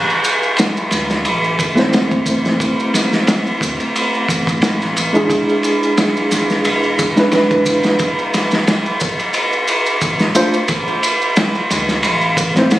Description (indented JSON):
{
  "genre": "trip hop",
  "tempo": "89 BPM",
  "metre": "4/4",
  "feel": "swing 55% on 16ths",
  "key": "A harmonic minor",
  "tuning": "A4 = 442 Hz",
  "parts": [
    { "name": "soft dub sub bass", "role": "bass", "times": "0.0-12.8 s", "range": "D1 to D2", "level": "-26 LUFS", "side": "equal", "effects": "none" },
    { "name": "maracas", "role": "percussion", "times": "0.1-12.8 s", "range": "none", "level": "-26 LUFS", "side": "right 2 dB", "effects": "none" },
    { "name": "crunchy breakbeat drum kit", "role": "drums", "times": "0.2-12.8 s", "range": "kick drum, ride cymbal, snare drum", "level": "-15 LUFS", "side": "equal", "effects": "none" },
    { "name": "tine electric piano", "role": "accompaniment", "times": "1.8-12.8 s", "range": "G#3 to C5", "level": "-16 LUFS", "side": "equal", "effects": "tremolo, tape echo" }
  ],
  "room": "light reverb, small room ambience",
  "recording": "recorded on a phone in the room, studio reverb, vinyl crackle",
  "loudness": "-13 LUFS",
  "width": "side -15 dB against mid",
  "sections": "0.0-12.8 A section",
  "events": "none",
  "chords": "0.0 Am; 5.3 E7; 8.0 Dm7; 10.7 Am",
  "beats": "0.58 1.26 1.93 | 2.60 3.28 3.95 4.63 | 5.30 5.97 6.65 7.32 | 8.00 8.67 9.35 10.02 | 10.70 11.37 12.04 12.72"
}